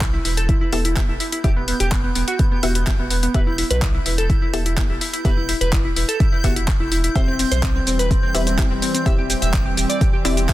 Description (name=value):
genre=progressive house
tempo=126 BPM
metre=4/4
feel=straight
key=E minor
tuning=A4 = 440 Hz
part: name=glassy wavetable pluck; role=arpeggios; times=0.0-10.4 s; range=B3 to E5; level=-24 LUFS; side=equal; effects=chorus, cassette tape, sidechain pumping, dub echo
part: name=wide unison pluck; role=stabs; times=0.0-10.5 s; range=B3 to E5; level=-28 LUFS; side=left 2 dB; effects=cassette tape, sidechain pumping, dub echo
part: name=round analog bass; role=bass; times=0.0-10.5 s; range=E1 to B1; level=-23 LUFS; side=equal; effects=sidechain pumping
part: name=deep house drum kit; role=drums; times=0.0-10.5 s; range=handclaps, hi-hat, shaker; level=-25 LUFS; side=left 1 dB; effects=sidechain pumping on hats, sidechain pumping on cymbals, sidechain pumping on perc
part: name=electronic kick drum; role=drums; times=0.0-10.5 s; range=none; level=-19 LUFS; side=equal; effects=none
part: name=backwards swelling texture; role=texture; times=0.1-10.5 s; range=G6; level=-33 LUFS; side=right 2 dB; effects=built-in reverb, sidechain pumping
part: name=evolving wavetable pad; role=sustained chords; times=7.5-10.5 s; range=E3 to C4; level=-26 LUFS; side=right 2 dB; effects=chorus, built-in reverb, vintage 12-bit sampler grit, sidechain pumping
room=digital ambience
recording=dense, heavily limited modern master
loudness=-17 LUFS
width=side -15 dB against mid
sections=0.0-10.5 A section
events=filter sweep on synth pluck 0.0-10.5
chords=0.0 Em; 7.2 C/E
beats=0.01 0.49 0.96 | 1.44 1.92 2.39 2.87 | 3.35 3.82 4.30 4.77 | 5.25 5.73 6.20 6.68 | 7.16 7.63 8.11 8.58 | 9.06 9.54 10.01 10.49